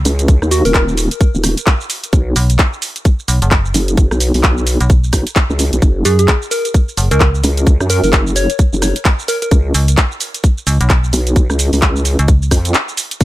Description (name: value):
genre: bass house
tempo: 130 BPM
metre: 4/4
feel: swing 60% on 16ths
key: unclear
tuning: A4 = 441 Hz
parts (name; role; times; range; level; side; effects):
- metallic FM bass; bass; 0.0-12.5 s; F#1 to Gb2; -13 LUFS; equal; overdrive, sidechain pumping
- vowel-sweep wobble bass; bass; 0.1-13.2 s; Eb1 to Gb2; -14 LUFS; equal; chorus, tube saturation, sidechain pumping
- garage drum kit; drums; 0.1-13.2 s; crash cymbal, handclaps, hi-hat, rim click, shaker; -18 LUFS; equal; none
- electronic kick drum; drums; 0.3-13.2 s; none; -11 LUFS; equal; none
- soft struck synth lead; melody; 0.5-0.8, 6.1-9.5 s; Gb4 to Db5; -19 LUFS; equal; chorus, ping-pong delay
room: little or no reverb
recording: none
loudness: -11 LUFS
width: side -16 dB against mid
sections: 0.0-13.2 A section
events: break 12.7-13.2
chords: 0.0 Eb7(no3); 2.1 B5; 5.8 Gb5; 9.5 Db7(no3)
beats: | 0.28 0.74 1.21 1.67 | 2.13 2.59 3.05 3.51 | 3.98 4.44 4.90 5.36 | 5.82 6.28 6.74 7.21 | 7.67 8.13 8.59 9.05 | 9.51 9.97 10.44 10.90 | 11.36 11.82 12.28 12.74 | 13.21